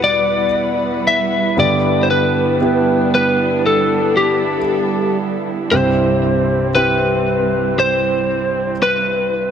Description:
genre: pop ballad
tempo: 58 BPM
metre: 4/4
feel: straight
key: unclear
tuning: A4 = 440 Hz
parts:
  - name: lightly driven lead guitar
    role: melody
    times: 0.0-9.5 s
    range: G4 to E5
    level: -16 LUFS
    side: left 2 dB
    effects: none
  - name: warm concert grand piano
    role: accompaniment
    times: 0.0-9.5 s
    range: C2 to G4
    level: -19 LUFS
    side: equal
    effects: none
  - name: muted studio string section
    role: sustained chords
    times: 0.0-9.5 s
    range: G3 to F#5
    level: -21 LUFS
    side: right 4 dB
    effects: none
room: moderate lush hall reverb, RT60 2.8 s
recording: none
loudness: -14 LUFS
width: side -8 dB against mid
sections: 0.0-9.5 A section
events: none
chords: 0.0 Emadd9; 1.6 G6; 5.7 C

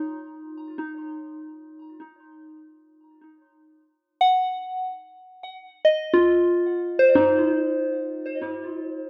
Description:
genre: ambient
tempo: free time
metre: none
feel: none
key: Eb dorian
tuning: A4 = 440 Hz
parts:
  - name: soft synth bell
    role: solo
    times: 0.0-9.1 s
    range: Eb4 to Bb5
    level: -23 LUFS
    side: equal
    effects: chorus, cassette tape, analog delay
room: wet booth ambience, RT60 0.3 s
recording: home recording on cassette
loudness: -22 LUFS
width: mono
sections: 0.0-9.0 A section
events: none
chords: 0.0 Bbm; 2.5 Ebm69

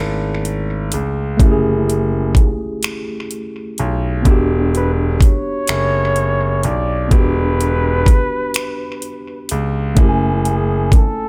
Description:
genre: slow six-eight R&B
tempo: 42 BPM (dotted quarters)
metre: 6/8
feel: straight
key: unclear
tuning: A4 = 440 Hz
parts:
  - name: mellow tine electric piano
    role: accompaniment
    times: 0.0-11.3 s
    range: A3 to G#5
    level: -24 LUFS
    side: equal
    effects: tape echo
  - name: clear concert grand piano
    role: bass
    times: 0.0-11.0 s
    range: E1 to C#2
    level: -21 LUFS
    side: equal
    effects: none
  - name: smooth R&B drum kit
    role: drums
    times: 0.5-11.1 s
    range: finger snaps, hi-hat, kick drum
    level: -16 LUFS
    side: equal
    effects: none
  - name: breathy flugelhorn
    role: melody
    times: 4.8-11.3 s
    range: G#4 to D5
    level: -24 LUFS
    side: equal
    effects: tape echo
room: small room ambience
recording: echo-heavy mix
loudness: -16 LUFS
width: mono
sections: 0.0-11.3 A section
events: none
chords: 0.0 F#m9; 4.3 Em9; 10.0 F#m9

